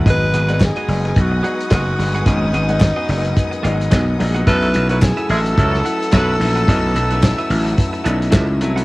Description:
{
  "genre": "disco",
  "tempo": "109 BPM",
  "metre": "4/4",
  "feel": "swing 56% on 16ths",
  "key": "unclear",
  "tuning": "A4 = 440 Hz",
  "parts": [
    { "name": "clear baby grand piano", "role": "accompaniment", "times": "0.0-8.8 s", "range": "F#3 to F#4", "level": "-24 LUFS", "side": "left 2 dB", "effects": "none" },
    { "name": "semi-hollow electric guitar", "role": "accompaniment", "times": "0.0-8.8 s", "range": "B3 to F#5", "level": "-26 LUFS", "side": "right 3 dB", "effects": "none" },
    { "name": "warm studio string section", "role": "sustained chords", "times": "0.0-8.8 s", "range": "B4 to E6", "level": "-29 LUFS", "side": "left 1 dB", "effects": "none" },
    { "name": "raspy tenor saxophone", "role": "melody", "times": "0.1-8.3 s", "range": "D#4 to B4", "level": "-22 LUFS", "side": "equal", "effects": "cassette tape" },
    { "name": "gritty slap bass", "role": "bass", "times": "0.1-8.8 s", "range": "F#1 to C#2", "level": "-18 LUFS", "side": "equal", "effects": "overdrive" },
    { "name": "warm soul drum kit", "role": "drums", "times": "0.1-8.8 s", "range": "hi-hat, kick drum, snare drum", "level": "-18 LUFS", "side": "equal", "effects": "cassette tape" },
    { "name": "group handclap", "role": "percussion", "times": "0.6-8.5 s", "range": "none", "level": "-30 LUFS", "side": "left 3 dB", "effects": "none" },
    { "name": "clear horn section", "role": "stabs", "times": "4.5-6.4 s", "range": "F#3 to B4", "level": "-21 LUFS", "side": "right 2 dB", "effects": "none" }
  ],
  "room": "light reverb",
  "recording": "home recording on cassette",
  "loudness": "-14 LUFS",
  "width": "side -20 dB against mid",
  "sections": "0.1-8.8 A section",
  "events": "none",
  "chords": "0.1 G#m7; 4.5 B7sus4",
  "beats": "| 0.06 0.61 1.16 1.72 | 2.27 2.82 3.37 3.92 | 4.47 5.03 5.58 6.13 | 6.68 7.23 7.78 8.33"
}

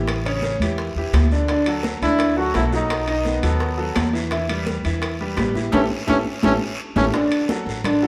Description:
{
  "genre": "latin, salsa",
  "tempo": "170 BPM",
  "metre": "4/4",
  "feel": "straight",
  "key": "D major",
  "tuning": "A4 = 440 Hz",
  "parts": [
    { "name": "bright grand piano", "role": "accompaniment", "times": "0.0-8.1 s", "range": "C#3 to E5", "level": "-26 LUFS", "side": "equal", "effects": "none" },
    { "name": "upright bass", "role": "bass", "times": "0.0-8.1 s", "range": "A1 to E2", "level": "-26 LUFS", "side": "equal", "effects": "none" },
    { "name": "bongos", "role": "percussion", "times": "0.1-8.1 s", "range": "none", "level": "-35 LUFS", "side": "equal", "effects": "none" },
    { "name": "congas", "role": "percussion", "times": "0.1-8.1 s", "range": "none", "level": "-32 LUFS", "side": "equal", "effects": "none" },
    { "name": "guiro", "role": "percussion", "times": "0.1-8.1 s", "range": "none", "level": "-38 LUFS", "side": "equal", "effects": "none" },
    { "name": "timbales", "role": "percussion", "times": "0.1-8.0 s", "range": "none", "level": "-30 LUFS", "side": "equal", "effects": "none" },
    { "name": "brilliant trombone", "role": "melody", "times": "2.0-7.1 s", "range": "B3 to F#4", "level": "-26 LUFS", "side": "equal", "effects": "none" }
  ],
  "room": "wet stone room reverb, RT60 1.4 s",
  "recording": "band playing live in one room",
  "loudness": "-21 LUFS",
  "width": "mono",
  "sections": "0.0-7.1 A section",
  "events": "drum fill 5.7-7.1; band accent 5.7-7.1",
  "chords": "0.1 A7; 1.5 D6; 2.9 B7; 4.3 Em; 5.7 A7; 7.1 D",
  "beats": "| 0.08 0.43 0.79 1.14 | 1.49 1.85 2.20 2.55 | 2.90 3.26 3.61 3.96 | 4.32 4.67 5.02 5.38 | 5.73 6.08 6.43 6.79 | 7.14 7.49 7.85"
}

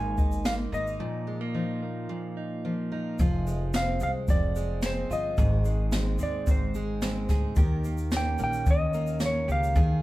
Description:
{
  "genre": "acoustic pop",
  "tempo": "110 BPM",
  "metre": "4/4",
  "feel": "straight",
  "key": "Eb major",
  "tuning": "A4 = 440 Hz",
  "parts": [
    { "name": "clean lap steel guitar", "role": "melody", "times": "0.0-10.0 s", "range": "C5 to Ab5", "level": "-31 LUFS", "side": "equal", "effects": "none" },
    { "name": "picked steel-string acoustic guitar", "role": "accompaniment", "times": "0.0-10.0 s", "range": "Ab2 to Bb4", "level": "-32 LUFS", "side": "left 1 dB", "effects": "none" },
    { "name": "direct-recorded clean electric guitar", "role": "arpeggios", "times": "0.0-10.0 s", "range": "Eb3 to Ab4", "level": "-36 LUFS", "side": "right 4 dB", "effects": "none" },
    { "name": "upright bass", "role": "bass", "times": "0.0-10.0 s", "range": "F1 to Eb2", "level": "-30 LUFS", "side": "equal", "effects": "none" },
    { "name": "jazz brush drum kit", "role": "drums", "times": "0.2-9.9 s", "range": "kick drum, shaker, snare drum", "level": "-27 LUFS", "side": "equal", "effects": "none" }
  ],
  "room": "light reverb",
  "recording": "band playing live in one room",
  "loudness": "-25 LUFS",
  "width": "side -17 dB against mid",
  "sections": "0.0-3.2 A section; 3.2-10.0 B section",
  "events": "break 1.0-3.2",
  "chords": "0.0 Absus2; 1.0 Bbsus4; 3.2 Fm; 5.4 Ab; 7.6 Eb7",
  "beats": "0.46 | 1.00 1.55 2.10 2.65 | 3.19 3.74 4.29 4.83 | 5.38 5.93 6.47 7.02 | 7.57 8.12 8.66 9.21 | 9.76"
}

